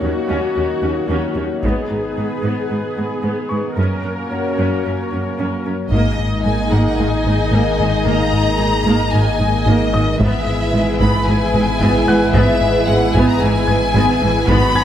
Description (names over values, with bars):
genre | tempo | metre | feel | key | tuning
cinematic, hybrid orchestral and electronic film score | 112 BPM | 4/4 | straight | G# minor | A4 = 445 Hz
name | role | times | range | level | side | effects
rich studio viola section | accompaniment | 0.0-14.8 s | D#3 to A#4 | -23 LUFS | right 1 dB | none
chorused pulse-width pad | sustained chords | 0.0-14.8 s | F#3 to D#5 | -22 LUFS | left 1 dB | none
rich symphonic cello section | bass | 0.0-14.6 s | D#2 to G#2 | -22 LUFS | right 1 dB | none
taiko ensemble | drums | 1.6-2.7, 5.9-6.9, 10.2-14.8 s | none | -24 LUFS | equal | none
bright baby grand piano | texture | 3.5-14.8 s | D#5 to G#6 | -30 LUFS | left 1 dB | none
warm symphonic violin section | melody | 5.9-14.8 s | D#5 to B5 | -21 LUFS | left 3 dB | none
warm symphonic violin section | second line | 5.9-14.8 s | F#4 to D#5 | -23 LUFS | left 4 dB | none
mellow trombone section | sustained chords | 5.9-14.8 s | D#3 to A#3 | -24 LUFS | right 3 dB | none
rubbery square bass | riff | 5.9-14.8 s | G#2 to G#3 | -22 LUFS | left 2 dB | none
sub bass with octave | bass | 5.9-14.8 s | G#1 | -24 LUFS | equal | none
warm symphonic double bass section | bass | 5.9-14.6 s | G#1 | -24 LUFS | right 2 dB | none
room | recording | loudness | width
moderate scoring stage reverb, RT60 1.6 s | none | -14 LUFS | side -10 dB against mid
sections
0.0-5.9 A section; 5.9-14.8 B section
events
build-up 0.0-5.9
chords
0.0 D#m7; 1.6 G#m; 3.8 F#; 5.9 G#sus2; 10.2 E/G#